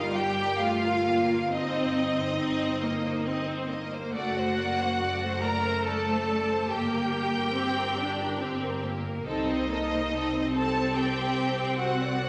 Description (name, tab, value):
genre	classical, slow romantic movement for string orchestra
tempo	70 BPM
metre	3/4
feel	uneven beats, rubato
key	G minor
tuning	A4 = 440 Hz
part	rich studio violin section	melody	0.0-12.3 s	G4 to Eb5	-40 LUFS	equal	none
part	clear studio violin section	second line	0.0-12.3 s	Eb5 to Bb5	-34 LUFS	equal	none
part	warm studio viola section	accompaniment	0.0-12.3 s	G3 to D4	-33 LUFS	equal	none
part	rich studio cello section	bass	0.0-12.3 s	Eb4 to Bb4	-33 LUFS	equal	none
part	rich studio double bass section	bass	0.0-12.3 s	F#1 to C2	-38 LUFS	equal	none
room	wet scoring stage reverb, RT60 1.6 s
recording	none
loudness	-28 LUFS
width	mono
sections	0.0-12.3 A section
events	none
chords	0.0 Gm; 1.5 Cm/G; 4.1 D7/F#; 6.7 Gm; 9.3 Adim/C; 11.8 D7/C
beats	0.62 | 1.51 2.38 3.25 | 4.14 5.01 5.86 | 6.71 7.56 8.41 | 9.27 10.13 10.95 | 11.78